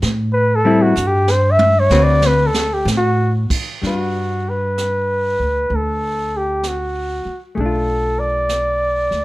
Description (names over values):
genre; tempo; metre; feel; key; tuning
jazz ballad; 64 BPM; 4/4; swing 66% on 8ths; G major; A4 = 437 Hz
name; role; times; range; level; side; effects
upright bass; bass; 0.0-9.2 s; B1 to A2; -20 LUFS; equal; none
jazz brush drum kit; drums; 0.0-9.2 s; brushed snare drum, crash cymbal, hi-hat, kick drum, snare drum, toms; -24 LUFS; right 2 dB; none
trumpet with bucket mute; melody; 0.3-9.2 s; F#4 to E5; -17 LUFS; equal; plate reverb
hollow-body jazz guitar; accompaniment; 0.6-9.2 s; D3 to B4; -19 LUFS; left 2 dB; none
room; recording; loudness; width
moderate studio reverb, RT60 0.6 s; none; -15 LUFS; side -18 dB against mid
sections
0.0-3.8 A section; 3.8-9.2 B section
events
muted trumpet solo 0.0-3.8; drum fill 1.0-2.9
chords
0.0 Am7; 1.9 D6; 3.8 G; 7.6 Bm7b5